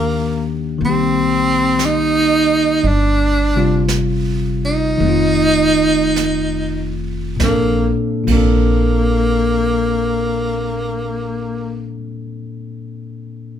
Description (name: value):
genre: jazz ballad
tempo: 47-62 BPM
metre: 4/4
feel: swing 68% on 8ths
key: Bb major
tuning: A4 = 440 Hz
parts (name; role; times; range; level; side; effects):
- breathy tenor saxophone; melody; 0.0-11.9 s; Bb3 to Eb4; -17 LUFS; right 2 dB; none
- bell-like tine electric piano; accompaniment; 0.0-13.6 s; Bb2 to A4; -19 LUFS; left 4 dB; none
- upright bass; bass; 0.0-11.8 s; F1 to Eb2; -21 LUFS; right 1 dB; none
- jazz brush drum kit; drums; 0.8-8.5 s; brushed snare drum, crash cymbal, hi-hat, kick drum, snare drum; -27 LUFS; right 4 dB; none
room: light reverb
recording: band playing live in one room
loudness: -14 LUFS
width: side -9 dB against mid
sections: 0.0-7.4 A section; 7.4-12.5 B section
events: slowing down 0.0-7.4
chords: 0.0 Ebmaj7; 0.8 Cm7; 2.8 G7sus4; 5.0 F7; 7.4 Bbmaj9